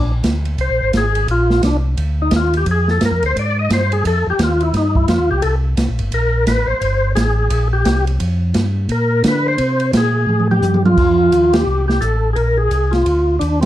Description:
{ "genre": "soul jazz organ trio", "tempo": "173 BPM", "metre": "4/4", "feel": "swing 62% on 8ths", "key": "unclear", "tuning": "A4 = 440 Hz", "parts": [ { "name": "percussive tonewheel organ", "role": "melody", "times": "0.0-13.7 s", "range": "C4 to Eb5", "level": "-17 LUFS", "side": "left 1 dB", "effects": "slow rotary speaker, overdrive, chorus vibrato" }, { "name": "mellow tonewheel organ", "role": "bass", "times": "0.0-13.7 s", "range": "G1 to D3", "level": "-17 LUFS", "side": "equal", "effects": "slow rotary speaker" }, { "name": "open jazz drum kit", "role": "drums", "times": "0.2-13.7 s", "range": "crash cymbal, hi-hat, kick drum, ride cymbal, snare drum, toms", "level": "-20 LUFS", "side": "right 2 dB", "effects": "none" } ], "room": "moderate large studio reverb, RT60 0.8 s", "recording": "dark, warm production", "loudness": "-14 LUFS", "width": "side -13 dB against mid", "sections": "0.0-11.0 A section; 11.0-13.7 B section", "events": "tonewheel organ solo 0.0-11.0; drum fill 10.3-11.0; band accent 11.5", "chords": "0.0 Bb9; 4.0 Fsus2; 5.4 C5; 8.2 Fsus2; 8.9 Bb; 9.6 C5; 11.0 F9; 12.4 Bb9" }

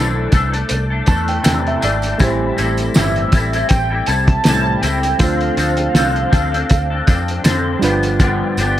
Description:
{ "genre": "indie pop, bedroom pop", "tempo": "80 BPM", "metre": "4/4", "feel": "swing 55% on 16ths", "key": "C major", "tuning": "A4 = 441 Hz", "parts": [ { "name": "clean electric guitar", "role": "accompaniment", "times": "0.0-8.8 s", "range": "G2 to A4", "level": "-19 LUFS", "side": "left 3 dB", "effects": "ensemble chorus, warbly pitch drift" }, { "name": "reed electric piano", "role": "accompaniment", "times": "0.0-8.8 s", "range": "G3 to A5", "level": "-23 LUFS", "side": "right 4 dB", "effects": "cassette tape" }, { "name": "vintage muted fingered electric bass", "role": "bass", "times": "0.0-8.8 s", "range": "G1 to F2", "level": "-20 LUFS", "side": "equal", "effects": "transformer saturation" }, { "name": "cloth-damped thuddy drum kit", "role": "drums", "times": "0.3-8.8 s", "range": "hi-hat, kick drum, snare drum", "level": "-16 LUFS", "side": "equal", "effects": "none" }, { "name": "tambourine", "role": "percussion", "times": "0.3-8.8 s", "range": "none", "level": "-32 LUFS", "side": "right 5 dB", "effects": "none" }, { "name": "warm velvety synth lead", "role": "melody", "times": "3.0-7.8 s", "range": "E5 to A5", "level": "-21 LUFS", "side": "right 2 dB", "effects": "wide subtle chorus, tape echo" } ], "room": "studio reverb", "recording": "dry, gritty hardware recording", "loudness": "-13 LUFS", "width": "side -12 dB against mid", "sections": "0.0-8.8 A section", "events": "reed electric piano fill 0.7-2.2", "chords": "0.0 C69; 2.2 Am7; 5.2 Dm7; 7.8 G7" }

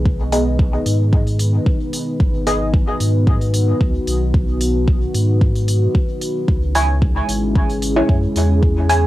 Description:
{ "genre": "dub techno", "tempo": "112 BPM", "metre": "4/4", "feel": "straight", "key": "G# minor", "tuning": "A4 = 440 Hz", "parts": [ { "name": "deep dark ambient pad", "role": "sustained chords", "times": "0.0-9.1 s", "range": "G#3 to B4", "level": "-22 LUFS", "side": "left 1 dB", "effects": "chorus, built-in reverb, vintage 12-bit sampler grit, sidechain pumping, cassette tape" }, { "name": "pure sine sub bass", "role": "bass", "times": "0.0-9.1 s", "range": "G#1 to G#2", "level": "-18 LUFS", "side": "equal", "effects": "sidechain pumping" }, { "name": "electronic kick drum", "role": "drums", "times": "0.1-8.7 s", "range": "none", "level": "-17 LUFS", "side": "equal", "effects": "cassette tape" }, { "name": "filtered dub chord stab", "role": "stabs", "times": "0.3-2.7, 6.8-9.0 s", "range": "B3 to G#5", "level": "-20 LUFS", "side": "equal", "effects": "phaser, sidechain pumping, cassette tape, dub echo" }, { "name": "electronic hi-hat", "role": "drums", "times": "0.3-9.0 s", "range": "none", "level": "-28 LUFS", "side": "equal", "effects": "cassette tape" } ], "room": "light reverb", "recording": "home recording on cassette", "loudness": "-15 LUFS", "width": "side -16 dB against mid", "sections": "0.0-9.1 A section", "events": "filter sweep on synth stab 0.0-9.1", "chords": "0.0 G#m; 6.5 C#m" }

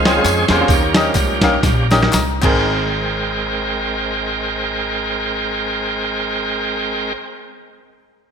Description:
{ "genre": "uptempo gospel", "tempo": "109-140 BPM", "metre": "4/4", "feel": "swing 56% on 8ths", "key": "Ab major", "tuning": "A4 = 445 Hz", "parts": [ { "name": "bright tonewheel organ", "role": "sustained chords", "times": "0.0-7.1 s", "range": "Eb3 to G5", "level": "-19 LUFS", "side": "right 2 dB", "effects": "fast rotary speaker, overdrive" }, { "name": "upright bass", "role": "bass", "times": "0.0-7.1 s", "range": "Ab1 to F2", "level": "-24 LUFS", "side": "equal", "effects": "none" }, { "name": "clear baby grand piano", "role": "accompaniment", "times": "0.1-7.2 s", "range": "Ab1 to Bb5", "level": "-20 LUFS", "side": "left 1 dB", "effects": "none" }, { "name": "boom bap sampler-style drum kit", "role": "drums", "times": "0.1-2.5 s", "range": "crash cymbal, hi-hat, kick drum, snare drum", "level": "-18 LUFS", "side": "equal", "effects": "none" }, { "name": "tambourine and handclaps", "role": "percussion", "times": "0.1-2.9 s", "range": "none", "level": "-28 LUFS", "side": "left 5 dB", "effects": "none" } ], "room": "wet lush hall reverb, RT60 2.0 s", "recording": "bright 1980s-style digital production", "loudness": "-15 LUFS", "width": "side -7 dB against mid", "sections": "0.0-2.7 A section; 2.7-7.1 B section", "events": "slowing down 0.0-2.7; tonewheel organ solo 0.0-2.7; drum fill 1.6-2.7; grand piano fill 1.9-2.7", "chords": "0.0 Dbmaj7; 0.7 Eb7; 2.4 Abmaj9" }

